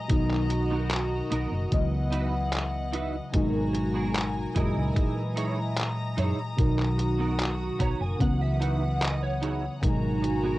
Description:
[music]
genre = vaporwave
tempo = 74 BPM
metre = 4/4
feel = straight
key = C# dorian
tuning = A4 = 438 Hz
[part]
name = mellow FM electric piano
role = accompaniment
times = 0.0-10.6 s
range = A#2 to D#5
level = -29 LUFS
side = equal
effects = phaser, analog chorus, cassette tape, tape echo
[part]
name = rich studio string section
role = sustained chords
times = 0.0-10.6 s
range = E3 to D#6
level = -34 LUFS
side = equal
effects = cassette tape
[part]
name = hollow-body short-scale fingered electric bass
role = bass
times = 0.1-10.6 s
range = F#1 to F#2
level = -30 LUFS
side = equal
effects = none
[part]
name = detuned 8-bit digital drum machine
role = drums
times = 0.1-10.4 s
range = handclaps, hi-hat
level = -32 LUFS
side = equal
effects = vintage 12-bit sampler grit, cassette tape
[part]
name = electronic kick drum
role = drums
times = 0.1-10.0 s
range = none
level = -26 LUFS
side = equal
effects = vintage 12-bit sampler grit, cassette tape
[part]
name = clean electric guitar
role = riff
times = 0.5-10.6 s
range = B3 to A#5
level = -35 LUFS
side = right 5 dB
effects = ensemble chorus, cassette tape, tape echo
[sound]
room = light reverb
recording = home recording on cassette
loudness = -24 LUFS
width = side -17 dB against mid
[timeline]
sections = 0.0-10.6 A section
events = clean electric guitar fill 7.4-9.8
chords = 0.1 Bmaj7; 1.7 C#m11; 3.3 G#m9; 4.6 F#13; 6.6 Bmaj7; 8.2 C#m11; 9.8 G#m9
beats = | 0.10 0.91 1.72 2.53 | 3.35 4.16 4.97 5.78 | 6.59 7.40 8.21 9.02 | 9.83

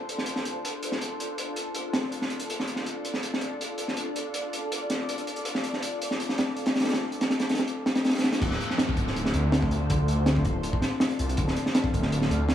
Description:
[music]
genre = drum and bass, jungle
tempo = 162 BPM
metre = 4/4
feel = straight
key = D minor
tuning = A4 = 438 Hz
[part]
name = soft string machine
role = sustained chords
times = 0.0-12.5 s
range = D4 to F5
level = -33 LUFS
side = left 1 dB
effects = phaser, ensemble chorus
[part]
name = crunchy breakbeat drum kit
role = drums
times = 0.1-12.5 s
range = crash cymbal, hi-hat, kick drum, snare drum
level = -27 LUFS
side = equal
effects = high-pass filter on kick, high-pass filter on hats, high-pass filter on cymbals, high-pass filter on snare, high-pass filter on room
[part]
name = detuned saw bass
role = bass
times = 8.4-12.5 s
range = D1 to D2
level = -26 LUFS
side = equal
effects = none
[part]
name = downlifter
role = sound effects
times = 8.4-11.4 s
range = none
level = -36 LUFS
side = equal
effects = none
[sound]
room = light reverb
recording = small room ambience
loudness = -25 LUFS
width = side -11 dB against mid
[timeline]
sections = 0.0-8.4 A section; 8.4-12.5 B section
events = drop 8.4-12.5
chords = 0.0 Dm7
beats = 0.27 0.64 | 1.01 1.38 1.75 2.12 | 2.49 2.86 3.23 3.60 | 3.98 4.34 4.72 5.09 | 5.46 5.83 6.20 6.57 | 6.94 7.31 7.68 8.05 | 8.42 8.79 9.16 9.53 | 9.90 10.27 10.64 11.01 | 11.38 11.75 12.12 12.49

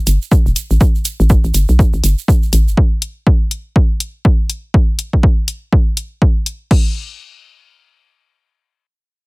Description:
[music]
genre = minimal techno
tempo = 122 BPM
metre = 4/4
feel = swing 59% on 16ths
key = unclear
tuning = A4 = 435 Hz
[part]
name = hollow knocking FM bass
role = bass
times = 0.1-2.8 s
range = E1 to B1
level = -12 LUFS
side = equal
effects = sidechain pumping
[part]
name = punchy analog drum machine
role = drums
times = 0.1-6.8 s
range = crash cymbal, hi-hat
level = -22 LUFS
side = left 4 dB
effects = overdrive
[part]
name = egg shaker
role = percussion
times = 0.1-2.8 s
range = none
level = -26 LUFS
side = right 9 dB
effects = none
[part]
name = electronic kick drum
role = drums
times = 0.3-6.8 s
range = none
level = -12 LUFS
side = equal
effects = overdrive
[sound]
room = little or no reverb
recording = none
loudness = -12 LUFS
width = side -28 dB against mid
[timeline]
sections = 0.0-6.7 A section; 6.7-9.3 B section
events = none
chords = none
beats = 0.32 | 0.81 1.30 1.79 2.28 | 2.77 3.27 3.76 4.25 | 4.74 5.23 5.72 6.22 | 6.71

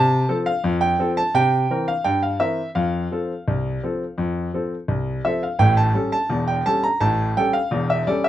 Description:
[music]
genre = ragtime piano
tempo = 85 BPM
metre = 2/4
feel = straight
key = F major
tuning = A4 = 438 Hz
[part]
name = clear grand piano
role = solo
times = 0.0-8.3 s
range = E1 to Bb5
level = -18 LUFS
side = equal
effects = none
[sound]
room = light reverb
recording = rough home demo mix, nothing above 10.9 kHz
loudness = -19 LUFS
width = side -12 dB against mid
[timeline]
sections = 0.0-5.6 A section; 5.6-8.3 B section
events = none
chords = 0.0 F/C; 1.3 C7; 2.8 F; 5.6 A7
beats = 0.65 | 1.35 2.05 | 2.76 3.47 | 4.19 4.90 | 5.61 6.31 | 7.02 7.72

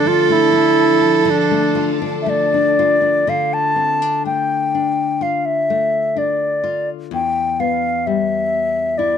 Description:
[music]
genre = celtic folk, Celtic slow air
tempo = 58-66 BPM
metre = 4/4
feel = rubato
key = D dorian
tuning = A4 = 440 Hz
[part]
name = bright baroque flute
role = melody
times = 0.0-9.2 s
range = D4 to A5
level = -16 LUFS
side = left 1 dB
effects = none
[part]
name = rich cello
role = second line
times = 0.0-2.8 s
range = A4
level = -17 LUFS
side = right 15 dB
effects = none
[part]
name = nylon-string guitar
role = accompaniment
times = 0.0-9.2 s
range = E2 to F4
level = -22 LUFS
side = left 12 dB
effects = none
[part]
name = clear studio string section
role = sustained chords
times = 0.0-3.3 s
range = F3 to A4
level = -26 LUFS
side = right 3 dB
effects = none
[sound]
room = small room ambience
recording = dry, close 1970s-style studio recording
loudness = -14 LUFS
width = side -8 dB against mid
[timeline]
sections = 0.0-3.3 A section; 3.3-9.2 B section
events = none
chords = 0.0 Dm; 7.1 Em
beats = 0.31 1.28 2.29 | 3.30 4.27 5.22 6.17 | 7.12 8.06 8.97

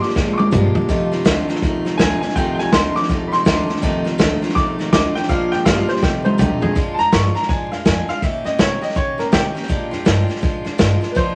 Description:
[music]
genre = rockabilly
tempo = 164 BPM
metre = 4/4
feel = swing 62% on 8ths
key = Bb mixolydian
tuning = A4 = 439 Hz
[part]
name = clear upright piano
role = melody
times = 0.0-11.3 s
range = G4 to D6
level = -25 LUFS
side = equal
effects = none
[part]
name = picked steel-string acoustic guitar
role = accompaniment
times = 0.0-11.3 s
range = F2 to G4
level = -27 LUFS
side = equal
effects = none
[part]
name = electric guitar through a small old amp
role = riff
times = 0.0-6.7 s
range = F2 to Ab3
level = -24 LUFS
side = equal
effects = none
[part]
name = upright bass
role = bass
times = 0.0-11.3 s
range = F1 to Db3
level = -28 LUFS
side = equal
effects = none
[part]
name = vintage drum kit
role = drums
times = 0.0-11.3 s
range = hi-hat, kick drum, snare drum, toms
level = -21 LUFS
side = equal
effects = none
[sound]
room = moderate studio reverb, RT60 0.6 s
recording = vinyl crackle, nothing above 10.3 kHz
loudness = -18 LUFS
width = mono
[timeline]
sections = 0.0-6.8 A section; 6.8-11.3 B section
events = upright piano solo 0.0-6.8; drum fill 0.2-0.9, 6.0-6.8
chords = 0.0 Bb7; 0.9 F7; 5.3 Bb7; 6.0 F7; 6.8 Bb7; 8.2 Eb7; 9.7 Bb7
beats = 0.16 0.52 | 0.89 1.26 1.62 1.99 | 2.35 2.72 3.09 3.46 | 3.82 4.19 4.55 4.92 | 5.29 5.66 6.02 6.39 | 6.75 7.12 7.49 7.86 | 8.22 8.59 8.96 9.33 | 9.69 10.06 10.43 10.79 | 11.16

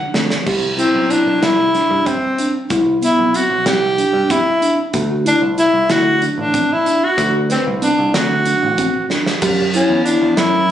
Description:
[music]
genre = progressive instrumental, band music in an uneven meter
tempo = 188 BPM (eighths)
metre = 7/8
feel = straight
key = C lydian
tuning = A4 = 440 Hz
[part]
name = breathy soprano saxophone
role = melody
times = 0.0-10.7 s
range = C4 to F#5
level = -16 LUFS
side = equal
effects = none
[part]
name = mellow tine electric piano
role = arpeggios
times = 0.0-10.6 s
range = B3 to B4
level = -19 LUFS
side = left 1 dB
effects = medium stereo tremolo
[part]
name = picked electric bass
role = bass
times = 0.1-10.7 s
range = A1 to G2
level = -21 LUFS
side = right 1 dB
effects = none
[part]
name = modern studio drum kit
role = drums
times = 0.1-10.5 s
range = crash cymbal, hi-hat, kick drum, snare drum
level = -22 LUFS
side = right 1 dB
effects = none
[sound]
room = moderate studio reverb, RT60 0.6 s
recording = recorded on a phone in the room, club reverb, nothing above 10.5 kHz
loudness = -13 LUFS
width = side -10 dB against mid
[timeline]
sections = 0.5-10.7 A section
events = drum fill 0.0-0.5, 9.1-9.4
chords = 0.5 Cmaj9; 4.9 D7; 9.4 F#5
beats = 0.14 | 0.46 0.78 1.10 1.42 1.74 2.06 2.38 | 2.70 3.02 3.34 3.66 3.98 4.30 4.62 | 4.94 5.26 5.58 5.90 6.22 6.54 6.86 | 7.18 7.50 7.82 8.14 8.46 8.78 9.10 | 9.42 9.74 10.06 10.38 10.71

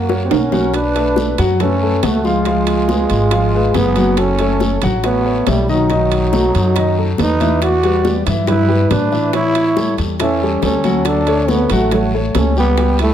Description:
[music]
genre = Afro-Cuban jazz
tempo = 140 BPM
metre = 4/4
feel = straight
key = unclear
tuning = A4 = 441 Hz
[part]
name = growling trombone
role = melody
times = 0.0-13.1 s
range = F#3 to F#4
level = -18 LUFS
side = right 1 dB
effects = none
[part]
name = mellow accordion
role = second line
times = 0.0-13.1 s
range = D#4 to D5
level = -23 LUFS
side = right 6 dB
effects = none
[part]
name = warm concert grand piano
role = accompaniment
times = 0.0-13.1 s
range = D#3 to G5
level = -19 LUFS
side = left 4 dB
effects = none
[part]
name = upright bass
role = bass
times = 0.0-13.1 s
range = F#1 to A2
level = -19 LUFS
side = equal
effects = none
[part]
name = bongos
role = percussion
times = 0.1-13.1 s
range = none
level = -24 LUFS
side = left 7 dB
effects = none
[part]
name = congas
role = percussion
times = 0.1-13.1 s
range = none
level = -24 LUFS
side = equal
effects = none
[part]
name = guiro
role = percussion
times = 0.3-13.1 s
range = none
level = -34 LUFS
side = left 4 dB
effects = none
[part]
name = timbales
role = percussion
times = 0.3-13.1 s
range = none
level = -24 LUFS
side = right 9 dB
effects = none
[sound]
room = light reverb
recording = none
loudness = -13 LUFS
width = side -10 dB against mid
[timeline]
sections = 0.7-13.1 A section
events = drum fill 0.1-0.7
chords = 0.0 F#; 0.7 Bm9; 2.5 C#7; 4.2 F#m; 5.9 B7; 7.6 Em9; 9.3 A7; 11.1 Dmaj7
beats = 0.32 | 0.74 1.17 1.60 2.03 | 2.46 2.89 3.32 3.75 | 4.18 4.61 5.04 5.47 | 5.90 6.33 6.76 7.19 | 7.62 8.05 8.48 8.91 | 9.34 9.77 10.20 10.63 | 11.06 11.49 11.92 12.35 | 12.78

